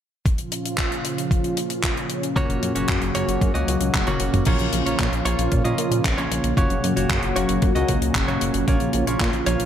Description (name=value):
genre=italo disco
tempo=114 BPM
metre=4/4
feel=straight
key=Bb minor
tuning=A4 = 440 Hz
part: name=lush unison pad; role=sustained chords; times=0.3-9.7 s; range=Bb2 to Gb4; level=-24 LUFS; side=equal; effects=chorus
part: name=damped 70s drum kit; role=drums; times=0.3-9.7 s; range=crash cymbal, handclaps, hi-hat, toms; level=-27 LUFS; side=left 1 dB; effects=studio reverb
part: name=electronic kick drum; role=drums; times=0.3-9.3 s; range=none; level=-23 LUFS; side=equal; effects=overdrive, studio reverb
part: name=direct-recorded clean electric guitar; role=stabs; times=2.4-9.7 s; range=Bb3 to Eb5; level=-27 LUFS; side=right 2 dB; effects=spring reverb, ping-pong delay
part: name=chorused synth bass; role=bass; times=2.4-9.7 s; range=Gb1 to Bb2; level=-25 LUFS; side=equal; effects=none
room=light reverb, small room ambience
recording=none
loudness=-19 LUFS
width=side -9 dB against mid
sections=0.3-4.5 A section; 4.5-9.7 B section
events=drum fill 3.9-4.5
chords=0.3 Bbm; 2.4 Gb; 4.5 Bbm; 6.6 Gb; 8.7 Bbm